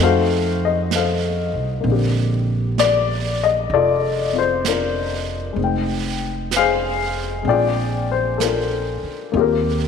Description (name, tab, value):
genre	jazz ballad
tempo	64 BPM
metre	4/4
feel	swing 68% on 8ths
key	Bb major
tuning	A4 = 438 Hz
part	dark baby grand piano	accompaniment	0.0-9.9 s	D3 to G5	-19 LUFS	left 7 dB	none
part	upright bass	bass	0.0-9.9 s	F1 to F2	-23 LUFS	right 3 dB	none
part	jazz brush drum kit	drums	0.9-9.9 s	brushed snare drum, hi-hat, snare drum	-28 LUFS	right 9 dB	none
room	moderate echo chamber reverb, RT60 2.5 s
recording	1960s-style stereo with parts hard left and right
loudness	-17 LUFS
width	side -6 dB against mid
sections	0.0-9.3 A section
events	none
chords	0.0 F7b9; 1.8 Bbmaj13; 5.6 Fm7; 7.5 Bb13; 9.3 Eb69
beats	0.91 | 1.84 2.78 3.71 4.64 | 5.58 6.51 7.45 8.39 | 9.34